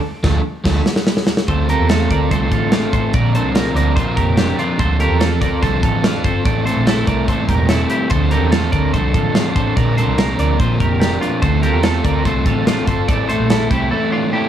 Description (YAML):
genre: jangly indie pop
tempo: 145 BPM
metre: 4/4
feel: straight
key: D minor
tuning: A4 = 440 Hz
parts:
  - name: crunchy overdriven guitar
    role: accompaniment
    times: 0.2-14.5 s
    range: A2 to Bb4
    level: -19 LUFS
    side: right 3 dB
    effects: none
  - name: vintage muted picked electric bass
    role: bass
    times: 0.2-13.9 s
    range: E1 to E2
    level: -19 LUFS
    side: equal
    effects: none
  - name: modern studio drum kit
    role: drums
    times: 0.2-13.8 s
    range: crash cymbal, hi-hat, kick drum, snare drum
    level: -19 LUFS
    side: equal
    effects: none
  - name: twelve-string electric guitar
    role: arpeggios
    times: 1.5-14.5 s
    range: D4 to D5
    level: -22 LUFS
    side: left 2 dB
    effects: analog delay
room: light reverb, studio reverb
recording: dry, gritty hardware recording, small room ambience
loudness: -14 LUFS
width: side -10 dB against mid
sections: 0.0-1.5 A section; 1.5-14.5 B section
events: drum fill 0.0-1.5; band accent 0.0-1.5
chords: 0.0 Dm; 1.5 Dm7; 3.1 Bbadd9; 4.8 Dm7; 6.5 Am; 8.1 Dm7; 9.8 Bbadd9; 11.4 Dm7; 13.1 Am